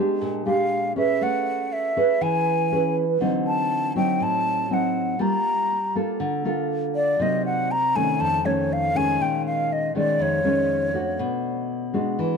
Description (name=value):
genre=bossa nova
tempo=120 BPM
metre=4/4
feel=straight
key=unclear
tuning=A4 = 440 Hz
part: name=nylon-string guitar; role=accompaniment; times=0.0-12.4 s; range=F2 to B4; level=-23 LUFS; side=right 1 dB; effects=none
part: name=breathy concert flute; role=melody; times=0.5-11.2 s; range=C#5 to Bb5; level=-24 LUFS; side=left 1 dB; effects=none
room=light reverb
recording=none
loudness=-20 LUFS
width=side -5 dB against mid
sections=0.0-12.4 A section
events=flute solo 0.0-12.4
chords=0.2 Bb6; 1.2 Amaj9; 3.2 D7b9; 5.2 Gm9; 7.2 Cm7b5; 8.2 F7alt; 9.2 Bbm7; 11.2 Bm7